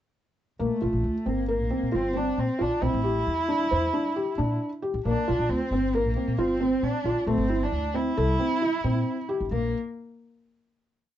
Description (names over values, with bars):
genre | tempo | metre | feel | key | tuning
contemporary instrumental, chamber music in an uneven meter | 134 BPM | 5/4 | straight | Bb lydian | A4 = 440 Hz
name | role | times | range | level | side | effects
dark cello | melody | 0.6-9.7 s | A3 to E4 | -29 LUFS | right 1 dB | none
felt-muted upright piano | arpeggios | 0.6-9.7 s | A3 to C5 | -27 LUFS | equal | none
upright bass | bass | 0.6-9.7 s | G1 to Bb2 | -28 LUFS | equal | none
room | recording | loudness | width
light reverb | dark, warm production, nothing above 8.0 kHz | -24 LUFS | side -11 dB against mid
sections
0.6-9.5 A section; 9.5-11.2 final chord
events
none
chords
0.6 Bbadd9; 2.8 Cadd9; 5.1 Bbadd9; 7.3 Am; 9.5 N.C.